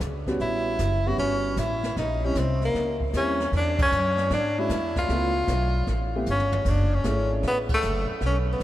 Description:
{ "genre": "jazz, small-group swing and bop", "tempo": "154 BPM", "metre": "4/4", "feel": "swing 67% on 8ths", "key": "unclear", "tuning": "A4 = 445 Hz", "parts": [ { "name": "upright bass", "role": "bass", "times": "0.0-8.6 s", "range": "F#1 to G#2", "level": "-27 LUFS", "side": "equal", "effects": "none" }, { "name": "jazz brush drum kit", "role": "drums", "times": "0.0-8.6 s", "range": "brushed snare drum, crash cymbal, hi-hat, kick drum, ride cymbal, snare drum, toms", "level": "-32 LUFS", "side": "equal", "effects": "none" }, { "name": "warm upright piano", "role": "accompaniment", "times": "0.3-7.7 s", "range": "G3 to G#4", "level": "-32 LUFS", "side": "equal", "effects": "none" }, { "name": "clear tenor saxophone", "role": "melody", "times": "0.4-8.6 s", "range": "A3 to F#4", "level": "-26 LUFS", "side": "equal", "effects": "none" } ], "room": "wet cathedral reverb, RT60 5.5 s", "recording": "in a vast, echoing space", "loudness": "-22 LUFS", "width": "side -14 dB against mid", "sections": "0.0-8.6 A section", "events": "band accent 3.7, 7.6; drum fill 6.3-6.7", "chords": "0.4 A13; 2.0 A#dim7; 3.5 E13; 5.1 C#7alt; 6.7 F#m7" }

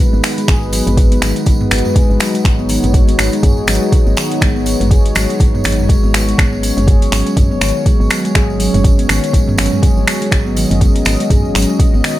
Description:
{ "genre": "afro house", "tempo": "122 BPM", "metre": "4/4", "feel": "swing 58% on 16ths", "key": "G# minor", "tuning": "A4 = 441 Hz", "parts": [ { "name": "warm analog pad", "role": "sustained chords", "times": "0.0-12.2 s", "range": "F#3 to D#5", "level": "-19 LUFS", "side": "left 1 dB", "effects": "chorus, sidechain pumping" }, { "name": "handpan", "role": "arpeggios", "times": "0.0-12.2 s", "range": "D#3 to G#4", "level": "-19 LUFS", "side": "equal", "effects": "sidechain pumping, digital delay" }, { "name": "woody FM bass", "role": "bass", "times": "0.1-12.0 s", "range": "G#1", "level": "-18 LUFS", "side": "equal", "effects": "sidechain pumping" }, { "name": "tambourine", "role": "percussion", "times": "0.1-12.2 s", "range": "none", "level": "-28 LUFS", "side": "right 3 dB", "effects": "none" }, { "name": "afro-pop drum kit", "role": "drums", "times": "0.2-12.2 s", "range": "finger snaps, hi-hat, toms", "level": "-18 LUFS", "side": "equal", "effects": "none" }, { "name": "electronic kick drum", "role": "drums", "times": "0.5-11.9 s", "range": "none", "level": "-12 LUFS", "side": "equal", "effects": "none" } ], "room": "digital ambience", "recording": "none", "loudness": "-11 LUFS", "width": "side -15 dB against mid", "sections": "0.0-12.2 A section", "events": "none", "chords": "0.0 G#m7" }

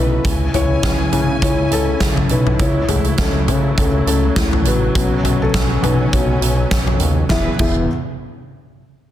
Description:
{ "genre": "piano-driven pop", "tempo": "102 BPM", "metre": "4/4", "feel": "swing 56% on 16ths", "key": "E major", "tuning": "A4 = 440 Hz", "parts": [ { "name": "felt-muted upright piano", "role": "accompaniment", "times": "0.0-7.9 s", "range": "E2 to E5", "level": "-20 LUFS", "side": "left 3 dB", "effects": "none" }, { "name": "warm studio string section", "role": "sustained chords", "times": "0.0-7.6 s", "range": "C#3 to G#5", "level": "-25 LUFS", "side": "right 2 dB", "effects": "none" }, { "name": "fat analog bass", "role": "bass", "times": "0.0-7.9 s", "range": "E1 to C#3", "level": "-19 LUFS", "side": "equal", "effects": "none" }, { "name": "huge arena drum kit", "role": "drums", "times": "0.2-7.7 s", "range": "crash cymbal, hi-hat, kick drum, snare drum, toms", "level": "-18 LUFS", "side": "equal", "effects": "none" } ], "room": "light reverb, studio reverb", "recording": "dense, heavily limited modern master", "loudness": "-14 LUFS", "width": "side -12 dB against mid", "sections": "0.0-7.3 A section; 7.3-9.1 B section", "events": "felt piano solo 0.0-7.3", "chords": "0.2 C#m; 2.6 F#m7/C#; 5.0 Bsus2; 7.3 E" }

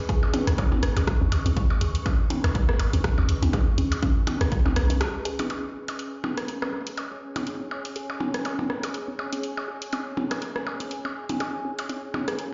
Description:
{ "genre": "minimal techno", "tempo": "122 BPM", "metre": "4/4", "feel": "swing 56% on 16ths", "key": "unclear", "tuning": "A4 = 439 Hz", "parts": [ { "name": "ethereal airy pad", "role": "texture", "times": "0.0-12.5 s", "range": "C#4 to C#6", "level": "-37 LUFS", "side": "equal", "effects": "ensemble chorus, built-in reverb, phaser, sidechain pumping" }, { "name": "resonant blip pluck", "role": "riff", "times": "0.1-12.3 s", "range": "C#4 to G#4", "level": "-38 LUFS", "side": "equal", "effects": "phaser, sidechain pumping, tape echo" }, { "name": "electronic kick drum", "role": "drums", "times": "0.1-4.6 s", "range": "none", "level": "-27 LUFS", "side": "equal", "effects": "studio reverb" }, { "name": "punchy analog drum machine", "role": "drums", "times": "0.1-12.5 s", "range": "hi-hat, rim click", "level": "-36 LUFS", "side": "equal", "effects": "studio reverb" }, { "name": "electronic percussion blips and rim click", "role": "percussion", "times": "0.2-12.4 s", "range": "none", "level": "-33 LUFS", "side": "equal", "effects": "studio reverb, tape echo" }, { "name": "punchy sub bass", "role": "bass", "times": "0.5-5.0 s", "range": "G#1 to C#2", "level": "-26 LUFS", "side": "equal", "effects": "sidechain pumping" } ], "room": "moderate small room reverb, RT60 0.6 s", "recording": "played on a big sound system in a bare room, large studio reverb, nothing above 7.5 kHz", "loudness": "-26 LUFS", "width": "mono", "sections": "0.0-5.5 A section; 5.5-12.5 B section", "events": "filter sweep on synth arpeggio sound 0.0-5.5, 5.5-12.5; break 5.0-5.5; band accent 5.0", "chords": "0.0 C#5" }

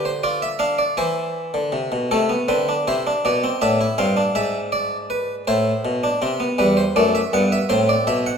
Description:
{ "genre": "classical, baroque-style 3-part fugue for harpsichord", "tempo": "54 BPM (dotted quarters)", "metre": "6/8", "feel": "straight", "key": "A minor", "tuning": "A4 = 439 Hz", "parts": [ { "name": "harpsichord", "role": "solo", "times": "0.0-8.4 s", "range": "E2 to F#5", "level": "-18 LUFS", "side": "equal", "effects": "none" } ], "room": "wet recital hall reverb, RT60 1.8 s", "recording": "minimal, uncompressed stereo recording", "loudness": "-18 LUFS", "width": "side -6 dB against mid", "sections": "0.0-2.1 A section; 2.1-8.4 B section", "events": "none", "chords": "0.0 G7(no3)/D (rootless); 1.0 C/E; 2.1 Am/C; 3.3 Bm7b5; 4.4 E7/G#; 5.5 Am; 6.6 Em; 7.7 F#m7b5/A" }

